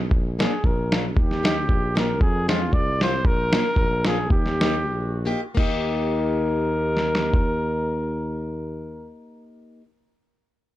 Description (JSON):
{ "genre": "alpine folk, alpine dance band", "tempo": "83-117 BPM", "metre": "2/4", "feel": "swing 54% on 8ths, rubato", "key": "Eb major", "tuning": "A4 = 445 Hz", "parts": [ { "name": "mellow tuba", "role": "bass", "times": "0.0-9.1 s", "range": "Bb1 to F2", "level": "-26 LUFS", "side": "equal", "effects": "tube saturation" }, { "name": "lo-fi sampler-style drum kit", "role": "drums", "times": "0.1-7.5 s", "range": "crash cymbal, hi-hat, kick drum, snare drum", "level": "-22 LUFS", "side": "equal", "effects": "none" }, { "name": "dark trumpet", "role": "melody", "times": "0.4-9.1 s", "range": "F4 to D5", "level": "-27 LUFS", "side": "equal", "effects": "analog delay" }, { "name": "picked plugged-in steel-string acoustic guitar", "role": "accompaniment", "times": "0.4-9.8 s", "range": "Ab3 to G4", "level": "-29 LUFS", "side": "left 3 dB", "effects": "none" } ], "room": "little or no reverb", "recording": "dry, gritty hardware recording", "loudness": "-20 LUFS", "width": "side -14 dB against mid", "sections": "0.0-5.6 A section; 5.6-8.4 B section", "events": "slowing down 3.2-5.6; break 4.9-5.6", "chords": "0.1 Bb; 1.2 Eb; 2.2 Fm; 3.2 Bb; 4.3 Eb" }